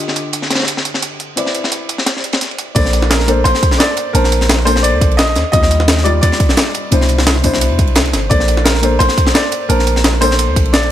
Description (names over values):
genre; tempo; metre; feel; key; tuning
liquid drum and bass; 173 BPM; 4/4; straight; Bb major; A4 = 441 Hz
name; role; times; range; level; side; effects
felt-muted upright piano; accompaniment; 0.0-10.9 s; B2 to A5; -20 LUFS; left 3 dB; tape echo
tight metal drum kit; drums; 0.1-10.9 s; ride cymbal, snare drum; -19 LUFS; equal; high-pass filter on cymbals, low-pass filter on cymbals, high-pass filter on snare, low-pass filter on snare, high-pass filter on room, low-pass filter on room
jungle sampler-style drum kit; drums; 0.2-10.8 s; crash cymbal, hi-hat, snare drum; -17 LUFS; right 1 dB; none
bright baby grand piano; melody; 2.7-10.9 s; Bb4 to Eb5; -18 LUFS; right 1 dB; tape echo
long sustained 808-style bass; bass; 2.8-10.9 s; G1 to E2; -15 LUFS; equal; none
electronic kick drum; drums; 2.8-10.6 s; none; -15 LUFS; equal; none
room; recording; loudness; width
small room ambience; none; -11 LUFS; side -11 dB against mid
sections
0.0-2.8 A section; 2.8-10.9 B section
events
drop 2.8-10.9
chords
0.0 Ebmaj9; 1.4 Cmaj9; 2.8 Bbmaj9; 5.4 Ebmaj9; 6.9 Cmaj9; 8.3 Bbmaj9